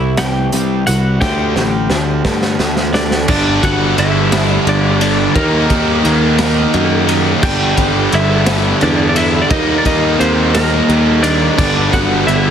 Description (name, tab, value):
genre	quiet-loud alternative rock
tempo	58 BPM (dotted quarters)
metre	6/8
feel	straight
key	unclear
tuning	A4 = 440 Hz
part	twelve-string electric guitar	melody	0.0-12.5 s	Bb3 to G5	-18 LUFS	equal	none
part	picked steel-string acoustic guitar	arpeggios	0.0-3.3 s	C3 to G4	-24 LUFS	right 1 dB	none
part	fuzz guitar	riff	0.0-12.5 s	G2 to Eb4	-20 LUFS	left 12 dB	distortion
part	thick fuzz guitar	riff	0.0-12.5 s	G2 to Eb4	-20 LUFS	right 9 dB	distortion
part	picked electric bass	bass	0.0-12.5 s	G1 to G2	-18 LUFS	equal	none
part	raw garage drum kit	drums	0.2-12.4 s	crash cymbal, hi-hat, kick drum, ride cymbal, snare drum	-18 LUFS	equal	none
part	distorted electric guitar	riff	3.3-12.5 s	G2 to Eb4	-18 LUFS	equal	overdrive
room	light reverb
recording	heavily compressed radio sound, multiband compression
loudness	-11 LUFS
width	side -8 dB against mid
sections	0.0-3.3 A section; 3.3-12.5 B section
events	drum fill 1.2-3.3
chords	0.0 C; 1.2 Dsus4; 3.3 G; 5.4 Eb; 7.4 G; 9.5 Eb; 11.6 G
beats	0.18 | 1.22 2.25 | 3.29 4.32 | 5.36 6.39 | 7.43 8.47 | 9.50 10.54 | 11.58